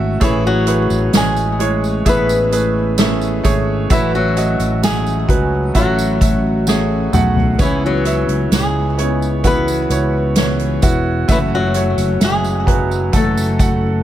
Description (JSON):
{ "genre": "pop ballad", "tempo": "65 BPM", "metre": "4/4", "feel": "straight", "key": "unclear", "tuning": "A4 = 440 Hz", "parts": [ { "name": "clear grand piano", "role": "accompaniment", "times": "0.0-14.0 s", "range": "A2 to F#5", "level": "-19 LUFS", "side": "right 4 dB", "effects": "none" }, { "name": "fingerpicked steel-string acoustic guitar", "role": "arpeggios", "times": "0.0-14.0 s", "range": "F#2 to G#4", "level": "-25 LUFS", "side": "left 7 dB", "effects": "ping-pong delay" }, { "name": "sustaining fretless electric bass", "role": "bass", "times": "0.0-14.0 s", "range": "E1 to C#2", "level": "-19 LUFS", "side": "equal", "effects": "none" }, { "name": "flamenco guitar", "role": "melody", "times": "0.2-14.0 s", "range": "E3 to B4", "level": "-20 LUFS", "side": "left 2 dB", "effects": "ping-pong delay" }, { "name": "soft-mallet drum kit", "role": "drums", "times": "0.2-13.8 s", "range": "hi-hat, kick drum, snare drum, toms", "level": "-17 LUFS", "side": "equal", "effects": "none" }, { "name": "tambourine", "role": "percussion", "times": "0.2-13.8 s", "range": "none", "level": "-30 LUFS", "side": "right 8 dB", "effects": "none" } ], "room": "light reverb, studio ambience", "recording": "none", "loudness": "-13 LUFS", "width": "side -12 dB against mid", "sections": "0.0-14.0 A section", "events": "drum fill 6.7-7.6", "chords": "0.2 Amaj7; 3.9 F#m7/A; 7.6 C#m7; 11.3 F#m7", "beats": "| 0.21 1.13 2.06 2.98 | 3.90 4.83 5.75 6.67 | 7.60 8.52 9.44 10.37 | 11.29 12.21 13.13" }